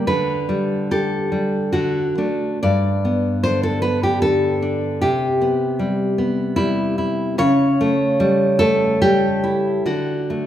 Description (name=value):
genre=romantic piece for solo classical guitar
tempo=66-78 BPM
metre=3/4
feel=rubato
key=G major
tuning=A4 = 440 Hz
part: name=nylon-string guitar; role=solo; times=0.0-10.5 s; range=G2 to D5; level=-17 LUFS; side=equal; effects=none
room=moderate concert hall reverb, RT60 2.2 s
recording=recorded in a church or concert hall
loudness=-17 LUFS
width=side -11 dB against mid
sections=0.0-10.5 A section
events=none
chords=0.1 Dsus4; 1.7 D; 2.6 G; 5.0 Cmaj7; 7.4 A7/C#; 9.9 D